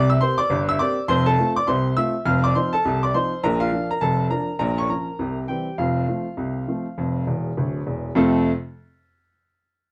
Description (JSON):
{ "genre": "ragtime piano", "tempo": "102 BPM", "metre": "2/4", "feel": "swing 59% on 16ths", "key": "F major", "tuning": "A4 = 436 Hz", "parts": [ { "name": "clear upright piano", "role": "solo", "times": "0.0-8.5 s", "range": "D1 to F6", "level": "-22 LUFS", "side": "equal", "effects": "none" } ], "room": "light reverb", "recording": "dark, warm production", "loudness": "-22 LUFS", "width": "mono", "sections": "0.0-8.2 A section; 8.2-9.3 B section", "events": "upright piano fill 7.3-8.2", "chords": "0.0 C7; 1.1 F; 2.3 F7; 3.4 Bb; 4.6 Bbm; 5.2 C7; 5.8 F" }